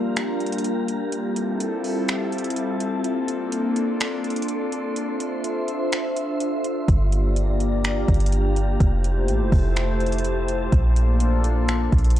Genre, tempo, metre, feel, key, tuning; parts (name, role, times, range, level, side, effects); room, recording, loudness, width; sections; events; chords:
hip hop, atmospheric cloud-rap; 125 BPM; 4/4; half-time; G dorian; A4 = 440 Hz
warbly tape-like pad; sustained chords; 0.0-12.2 s; G3 to E5; -24 LUFS; left 1 dB; chorus, built-in reverb, sidechain pumping
wind-like tuned noise texture; texture; 0.0-12.2 s; F4 to C6; -35 LUFS; right 1 dB; built-in reverb
smooth R&B drum kit; drums; 0.2-12.2 s; finger snaps, hi-hat, kick drum; -24 LUFS; equal; overdrive
soft 808-style bass; bass; 6.9-12.2 s; F1 to Bb1; -20 LUFS; equal
digital ambience; dry, gritty hardware recording, transformer saturation; -20 LUFS; side -12 dB against mid
0.0-12.2 A section
break 0.0-6.9
0.0 Gm7; 1.1 Fmaj9; 3.0 Bbmaj9; 5.0 Dm9; 6.9 Gm7; 8.8 Fmaj9; 10.7 Bbmaj9